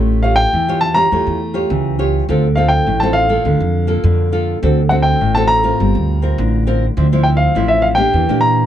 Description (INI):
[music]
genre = samba and choro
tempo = 103 BPM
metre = 4/4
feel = straight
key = D minor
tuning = A4 = 440 Hz
[part]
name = nylon-string guitar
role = accompaniment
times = 0.0-8.7 s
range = A2 to C#5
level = -18 LUFS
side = left 1 dB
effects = none
[part]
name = upright bass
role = bass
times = 0.0-8.7 s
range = G1 to Bb2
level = -16 LUFS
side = right 1 dB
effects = none
[part]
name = warm grand piano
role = melody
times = 0.2-8.7 s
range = E5 to Bb5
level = -16 LUFS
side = equal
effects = none
[sound]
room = little or no reverb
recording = dark, warm production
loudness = -12 LUFS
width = side -11 dB against mid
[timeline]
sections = 0.0-8.7 A section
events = none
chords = 0.0 A7b9b13; 2.3 Dm7; 3.5 Bbmaj7/D; 4.6 D7; 5.8 Gm11; 7.0 Dm9; 8.1 Em7b5